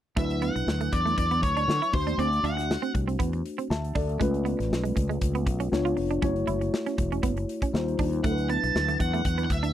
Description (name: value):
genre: polished 1980s jazz-funk pop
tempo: 119 BPM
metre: 4/4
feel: swing 54% on 16ths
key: D major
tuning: A4 = 443 Hz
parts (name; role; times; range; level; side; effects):
- octave-fuzz lead guitar; melody; 0.2-2.9, 8.2-9.7 s; C5 to A5; -28 LUFS; equal; distortion, slapback echo
- tine electric piano; accompaniment; 0.2-9.7 s; F#3 to A5; -30 LUFS; left 2 dB; lush chorus
- semi-hollow electric guitar; riff; 0.2-9.7 s; G#3 to E#4; -32 LUFS; right 9 dB; analog chorus
- fretless electric bass; bass; 0.2-9.7 s; E1 to D3; -29 LUFS; equal; analog chorus
- modern studio drum kit; drums; 0.2-9.7 s; hi-hat, kick drum, snare drum; -30 LUFS; equal; none
room: little or no reverb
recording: dry, close 1970s-style studio recording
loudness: -24 LUFS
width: side -11 dB against mid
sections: 0.2-9.7 A section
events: none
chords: 0.2 D69; 1.9 D7; 4.2 C#7b13; 5.7 C#7b9; 6.2 F#m7; 7.7 Eb69; 8.2 D69